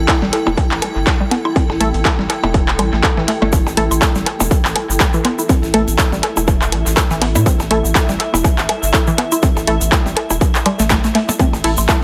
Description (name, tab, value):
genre	minimal techno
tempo	122 BPM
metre	4/4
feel	swing 56% on 16ths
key	unclear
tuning	A4 = 440 Hz
part	round analog bass	bass	0.0-11.9 s	E1 to A2	-22 LUFS	equal	sidechain pumping
part	granular cloud pad	texture	0.0-12.0 s	E4 to G5	-26 LUFS	equal	built-in reverb, sidechain pumping
part	dusty soul sampler-style drum kit	drums	0.1-12.0 s	hi-hat, snare drum	-32 LUFS	equal	none
part	electronic kick drum	drums	0.1-12.0 s	none	-18 LUFS	equal	overdrive
part	house drum kit	drums	0.1-12.0 s	handclaps, hi-hat, ride cymbal	-22 LUFS	equal	overdrive, analog delay
part	percussion blips	percussion	0.1-12.0 s	none	-25 LUFS	equal	analog delay
part	hollow square pluck	riff	0.2-11.4 s	E3 to A4	-23 LUFS	equal	chorus, phaser, sidechain pumping, analog delay
part	wavetable chord stab	stabs	1.8-11.7 s	A3 to A4	-25 LUFS	equal	analog delay
part	tube shaker	percussion	3.5-12.0 s	none	-28 LUFS	equal	none
room	light reverb, digital ambience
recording	echo-heavy mix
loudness	-15 LUFS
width	mono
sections	0.0-12.0 A section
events	none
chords	0.0 A5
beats	0.08 0.58 1.07 | 1.56 2.05 2.54 3.04 | 3.53 4.02 4.51 5.00 | 5.49 5.99 6.48 6.97 | 7.46 7.95 8.45 8.94 | 9.43 9.92 10.41 10.90 | 11.40 11.89